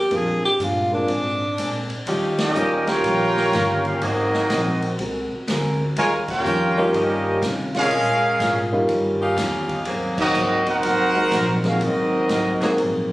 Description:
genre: jazz, big band swing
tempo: 123 BPM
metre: 4/4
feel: swing 66% on 8ths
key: Eb major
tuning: A4 = 440 Hz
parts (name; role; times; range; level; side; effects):
- breathy tenor saxophone; melody; 0.0-1.9 s; D4 to Ab4; -22 LUFS; equal; none
- upright bass; bass; 0.0-13.1 s; G1 to C3; -29 LUFS; equal; none
- dark grand piano; accompaniment; 0.1-1.1, 6.8-13.1 s; G3 to Ab4; -23 LUFS; equal; none
- fingerpicked steel-string acoustic guitar; accompaniment; 0.1-13.1 s; Ab2 to Bb4; -28 LUFS; left 1 dB; none
- swinging big-band drum kit; drums; 0.1-12.9 s; crash cymbal, hi-hat, kick drum, ride cymbal, snare drum; -31 LUFS; equal; none
- bright saxophone section; sustained chords; 2.1-12.7 s; F3 to Ab4; -26 LUFS; equal; none
- mellow trumpet section; melody; 2.4-12.8 s; C4 to Ab5; -20 LUFS; equal; none
- mellow trombone section; second line; 2.4-12.8 s; Gb3 to G4; -27 LUFS; right 1 dB; none
room: moderate large studio reverb, RT60 1.3 s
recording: recorded on a phone in the room, studio reverb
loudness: -18 LUFS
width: side -17 dB against mid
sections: 0.0-2.1 A section; 2.1-13.1 B section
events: tenor saxophone solo 0.0-2.1; break 1.6-2.1; band accent 2.3, 6.2, 10.1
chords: 0.1 Bb9; 2.1 Eb9; 4.0 Ab9; 6.0 Eb9; 7.9 Bbm7; 8.9 Eb9; 9.9 Ab9

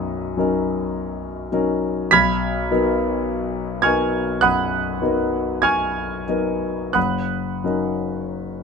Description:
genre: classical, impressionist solo piano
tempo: 44-54 BPM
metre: 4/4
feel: rubato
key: unclear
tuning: A4 = 441 Hz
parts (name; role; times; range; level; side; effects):
- warm concert grand piano; solo; 0.0-8.6 s; F#1 to B6; -19 LUFS; equal; none
room: light reverb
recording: none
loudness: -19 LUFS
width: side -5 dB against mid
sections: 0.0-8.6 A section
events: none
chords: 0.0 Bmaj9; 2.1 Bmaj7; 7.0 F#6

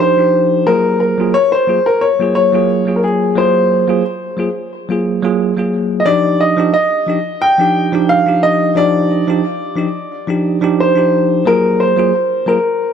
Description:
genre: chillout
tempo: 89 BPM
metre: 4/4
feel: swing 54% on 16ths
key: unclear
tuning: A4 = 439 Hz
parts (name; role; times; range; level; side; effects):
- warm grand piano; melody; 0.0-12.9 s; Ab4 to G5; -14 LUFS; left 1 dB; digital delay
- bell-like tine electric piano; accompaniment; 0.0-12.6 s; F3 to Ab4; -15 LUFS; moving between left 5 dB and right 7 dB; auto-pan, low-pass filter
room: moderate plate reverb, RT60 2.4 s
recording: none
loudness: -11 LUFS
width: side -7 dB against mid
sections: 0.0-12.9 A section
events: none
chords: 0.0 Ebmaj9; 0.7 Gbmaj9; 6.1 Ebmaj9; 11.5 Gbmaj9

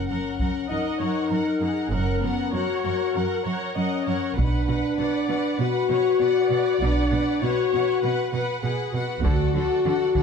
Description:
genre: cinematic, epic orchestral film score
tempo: 99 BPM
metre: 4/4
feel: straight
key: F# major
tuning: A4 = 440 Hz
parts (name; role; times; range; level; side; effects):
- warm symphonic violin section; melody; 0.0-10.2 s; F#5; -36 LUFS; left 4 dB; none
- warm studio violin section; second line; 0.0-10.2 s; A4 to F#5; -32 LUFS; left 2 dB; none
- dark French horn section; sustained chords; 0.0-10.2 s; C#4 to F#4; -24 LUFS; left 4 dB; none
- warm symphonic cello section; bass; 0.1-10.2 s; F#2 to D3; -29 LUFS; right 4 dB; none
- taiko ensemble; drums; 0.4-0.7, 4.4-5.6, 9.2-10.2 s; none; -27 LUFS; equal; none
- dark symphonic viola section; accompaniment; 0.7-10.2 s; B3 to D#5; -31 LUFS; right 1 dB; none
- rich symphonic double bass section; bass; 1.9-9.5 s; F#1 to D2; -27 LUFS; right 3 dB; none
room: moderate scoring stage reverb, RT60 1.5 s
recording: dark, warm production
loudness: -21 LUFS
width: side -6 dB against mid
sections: 0.0-10.2 A section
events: none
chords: 0.0 F#; 4.4 Bm; 9.2 D

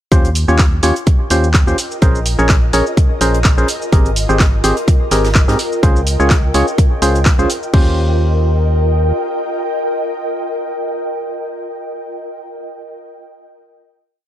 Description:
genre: piano house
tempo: 126 BPM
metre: 4/4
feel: swing 54% on 16ths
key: Eb mixolydian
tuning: A4 = 440 Hz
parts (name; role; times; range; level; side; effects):
- percussive organ stab; riff; 0.1-12.0 s; C4 to Db5; -18 LUFS; equal; chorus, sidechain pumping, analog delay
- organ-like FM bass; bass; 0.1-9.1 s; Ab1 to Ab2; -16 LUFS; equal; sidechain pumping
- compact cocktail drum kit; drums; 0.1-7.6 s; hi-hat, snare drum; -30 LUFS; right 3 dB; none
- electronic kick drum; drums; 0.1-7.8 s; none; -12 LUFS; equal; studio reverb
- punchy analog drum machine; drums; 0.1-7.8 s; crash cymbal, handclaps, hi-hat, shaker; -20 LUFS; equal; studio reverb
- ethereal airy pad; texture; 1.5-12.2 s; F4 to G5; -22 LUFS; left 1 dB; ensemble chorus, built-in reverb, sidechain pumping
room: light reverb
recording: dry, gritty hardware recording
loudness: -12 LUFS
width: side -12 dB against mid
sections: 0.1-7.7 drop; 7.7-11.5 final chord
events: drop 0.1-7.7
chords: 0.1 Eb13; 1.8 Bbm9; 3.9 Abmaj9; 5.8 Dbmaj7; 7.7 Eb13

